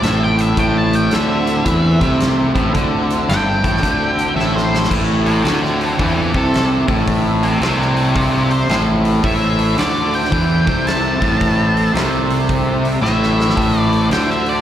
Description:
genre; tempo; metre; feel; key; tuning
blues rock power trio and southern rock; 111 BPM; 4/4; swing 65% on 8ths; A minor; A4 = 440 Hz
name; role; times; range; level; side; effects
octave-fuzz lead guitar; melody; 0.0-14.6 s; D4 to A5; -21 LUFS; equal; distortion
overdriven tonewheel organ; sustained chords; 0.0-14.6 s; A3 to C5; -27 LUFS; right 2 dB; none
biting overdriven guitar; riff; 0.0-14.6 s; G2 to E3; -17 LUFS; equal; none
fuzz fingered electric bass; bass; 0.0-14.6 s; G1 to E2; -20 LUFS; equal; overdrive
huge arena drum kit; drums; 0.0-14.5 s; crash cymbal, hi-hat, kick drum, snare drum; -23 LUFS; equal; none
room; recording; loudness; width
light reverb; live gig heard through the venue's PA, recital hall reverb; -13 LUFS; side -10 dB against mid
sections
0.0-4.9 A section; 4.9-14.6 A section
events
drum fill 4.4-4.9, 13.0-13.6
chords
0.0 Am

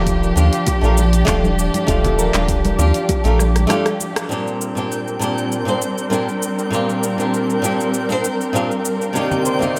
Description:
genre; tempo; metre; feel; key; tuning
sunset chillout; 99 BPM; 4/4; swing 53% on 16ths; Bb major; A4 = 435 Hz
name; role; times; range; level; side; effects
flamenco guitar; accompaniment; 0.0-9.8 s; Bb2 to C5; -24 LUFS; equal; analog delay
dark chamber string section; sustained chords; 0.0-9.8 s; Eb3 to D5; -24 LUFS; equal; low-pass filter
mellow electric guitar; arpeggios; 0.0-3.4, 9.2-9.7 s; G4 to C5; -29 LUFS; equal; phaser, analog delay
round analog bass; bass; 0.0-3.7 s; Eb1 to Eb2; -19 LUFS; equal; none
electronic kick drum; drums; 0.1-3.2 s; none; -24 LUFS; equal; overdrive
smooth R&B drum kit; drums; 0.1-9.8 s; cabasa, handclaps, hi-hat, rim click; -28 LUFS; equal; none
congas; percussion; 0.4-3.8, 9.3-9.7 s; none; -29 LUFS; equal; none
twinkling granular texture; texture; 4.5-9.8 s; G5 to G6; -33 LUFS; equal; built-in reverb
room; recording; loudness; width
moderate echo chamber reverb, RT60 2.1 s; echo-heavy mix; -18 LUFS; mono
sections
0.0-4.3 A section; 4.3-9.8 B section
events
drum fill 3.4-4.3; break 3.7-4.3; band accent 4.2-4.5; filter sweep on string section 4.3-9.8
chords
0.0 Ebmaj9#11; 4.3 Bb69; 9.2 Cm9

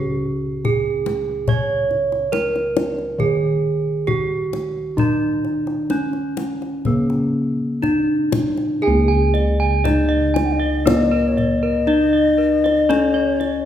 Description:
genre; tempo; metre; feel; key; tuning
Javanese gamelan; 59-72 BPM; 4/4; straight; C# pelog barang; A4 = 442 Hz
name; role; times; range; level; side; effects
gamelan-type bronze metallophone; melody; 0.0-13.7 s; A#3+20c to C#5; -20 LUFS; right 1 dB; none
gamelan-type bossed gongs; bass; 0.0-13.7 s; C#2 to C#5; -23 LUFS; left 1 dB; none
kendang; percussion; 0.6-13.5 s; none; -24 LUFS; left 3 dB; none
gamelan-type bronze metallophone; arpeggios; 8.8-13.6 s; A#4+20c to G#5-40c; -23 LUFS; right 3 dB; none
hollow bass bansuri; second line; 10.4-13.7 s; C#5 to F#5+32c; -21 LUFS; left 6 dB; none
room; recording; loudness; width
wet recital hall reverb, RT60 1.5 s; recorded in a church or concert hall; -17 LUFS; side -10 dB against mid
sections
0.0-8.8 A section; 8.8-13.7 B section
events
none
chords
none

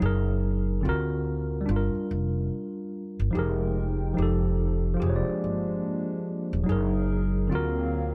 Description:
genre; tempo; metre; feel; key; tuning
hip hop; 72 BPM; 4/4; swing 62% on 16ths; F dorian; A4 = 440 Hz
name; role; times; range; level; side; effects
mellow tine electric piano; accompaniment; 0.0-8.1 s; D3 to D5; -31 LUFS; equal; cassette tape, low-pass filter
upright bass; bass; 0.0-8.1 s; Eb1 to D2; -30 LUFS; equal; none
hollow soft pad; sustained chords; 3.5-8.1 s; D3 to G5; -37 LUFS; equal; chorus, low-pass filter
room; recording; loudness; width
studio reverb; none; -27 LUFS; mono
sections
0.0-8.1 A section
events
none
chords
0.0 Gb69; 0.8 D7alt; 1.7 Gm7; 3.3 Fm11; 4.2 F9; 5.0 Bb13/F; 6.7 Gb69; 7.5 D7alt

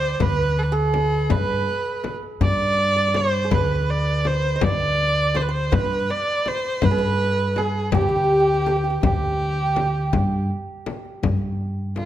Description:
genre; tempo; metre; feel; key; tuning
Persian modal ensemble; 54 BPM (dotted quarters); 6/8; straight; G dastgah homayun; A4 = 440 Hz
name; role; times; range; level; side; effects
rich kamancheh; melody; 0.0-12.1 s; F4 to D5; -23 LUFS; right 2 dB; none
santur; second line; 0.0-12.1 s; G4 to Eb5; -26 LUFS; right 1 dB; none
upright bass; bass; 0.0-12.1 s; D2 to G2; -24 LUFS; equal; none
tombak; percussion; 0.0-12.1 s; none; -27 LUFS; left 3 dB; none
frame drum; percussion; 0.2-12.1 s; none; -27 LUFS; left 4 dB; none
room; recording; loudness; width
light reverb; close, detailed microphones; -19 LUFS; side -12 dB against mid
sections
0.0-11.2 A section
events
none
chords
none

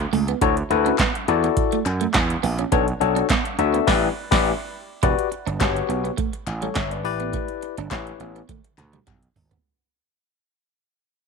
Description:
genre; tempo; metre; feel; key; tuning
early-eighties boogie funk; 104 BPM; 4/4; straight; E dorian; A4 = 440 Hz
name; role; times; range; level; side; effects
gritty slap bass; bass; 0.0-9.6 s; E1 to F#2; -25 LUFS; right 2 dB; overdrive
clean electric guitar; riff; 0.1-9.6 s; G3 to E4; -28 LUFS; right 18 dB; lush chorus
electro analog drum machine; drums; 0.1-9.6 s; crash cymbal, handclaps, hi-hat, kick drum, snare drum, toms; -24 LUFS; right 2 dB; none
barky tine electric piano; accompaniment; 0.4-8.4 s; D4 to E5; -23 LUFS; left 13 dB; none
group handclap; percussion; 1.0-9.2 s; none; -35 LUFS; left 10 dB; none
room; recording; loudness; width
light reverb; 1960s-style stereo with parts hard left and right; -19 LUFS; side -4 dB against mid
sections
0.0-5.0 A section; 5.0-9.6 B section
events
band accent 3.9-5.0; fade-out 5.0-9.6; drum fill 8.5-9.6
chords
0.4 Dmaj9; 2.7 Bm9; 3.9 A9sus4; 5.0 Em7; 7.0 A9sus4

